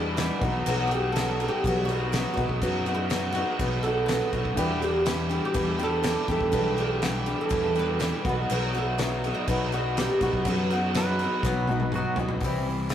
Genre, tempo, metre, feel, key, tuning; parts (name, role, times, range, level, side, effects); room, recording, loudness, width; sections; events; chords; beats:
folk rock and heartland rock; 122 BPM; 4/4; straight; A4 = 440 Hz
oud; melody; 0.0-12.9 s; D#4 to B4; -30 LUFS; right 2 dB
picked steel-string acoustic guitar; accompaniment; 0.0-12.9 s; E2 to G4; -30 LUFS; left 4 dB
warm baby grand piano; accompaniment; 0.0-12.1 s; G3 to F#5; -39 LUFS; right 2 dB
mellow tonewheel organ; sustained chords; 0.0-12.9 s; F#3 to F#5; -38 LUFS; right 2 dB
raw garage guitar; riff; 0.0-12.9 s; E2 to G4; -34 LUFS; right 1 dB; overdrive
fingered electric bass; bass; 0.0-12.9 s; B1 to F#2; -31 LUFS; equal
loose indie drum kit; drums; 0.2-12.9 s; crash cymbal, hi-hat, kick drum, snare drum, toms; -29 LUFS; equal
pedal steel guitar; second line; 11.0-12.2 s; F#4 to B4; -32 LUFS; right 3 dB
moderate stone room reverb, RT60 1.2 s; rough rehearsal-room recording; -23 LUFS; side -10 dB against mid
0.0-12.4 A section
drum fill 11.4-12.4
0.4 B; 4.6 Em7; 8.2 B; 12.4 C
0.17 | 0.66 1.15 1.64 2.13 | 2.62 3.11 3.60 4.09 | 4.58 5.07 5.55 6.04 | 6.54 7.03 7.51 8.00 | 8.49 8.98 9.47 9.96 | 10.45 10.94 11.43 11.92 | 12.41 12.90